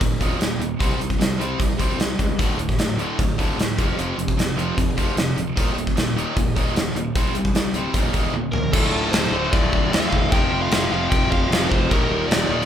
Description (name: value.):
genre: hard rock.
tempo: 151 BPM.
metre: 4/4.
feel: straight.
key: D phrygian.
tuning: A4 = 440 Hz.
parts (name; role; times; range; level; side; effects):
distorted electric guitar; riff; 0.0-12.7 s; D2 to C4; -28 LUFS; left 7 dB; overdrive.
tight distorted guitar; riff; 0.0-12.7 s; D2 to C4; -26 LUFS; right 5 dB; distortion.
fuzz fingered electric bass; bass; 0.0-12.7 s; D1 to C#2; -29 LUFS; equal; overdrive.
gated 80s drum kit; drums; 0.0-12.7 s; crash cymbal, hi-hat, kick drum, snare drum, toms; -21 LUFS; equal; none.
biting lead guitar; melody; 8.5-12.7 s; A4 to G5; -26 LUFS; left 1 dB; overdrive.
distorted electric guitar; riff; 8.7-12.7 s; D2 to G4; -29 LUFS; left 1 dB; none.
room: light reverb.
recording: band playing live in one room.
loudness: -18 LUFS.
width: side -9 dB against mid.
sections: 0.0-8.7 A section; 8.7-12.7 B section.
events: drum fill 8.3-8.7.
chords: 0.0 Eb5; 0.8 C5; 2.4 D5; 3.8 F5; 5.6 Eb5; 7.2 C5; 7.9 Eb5; 8.7 Dm; 10.3 F; 11.9 Eb.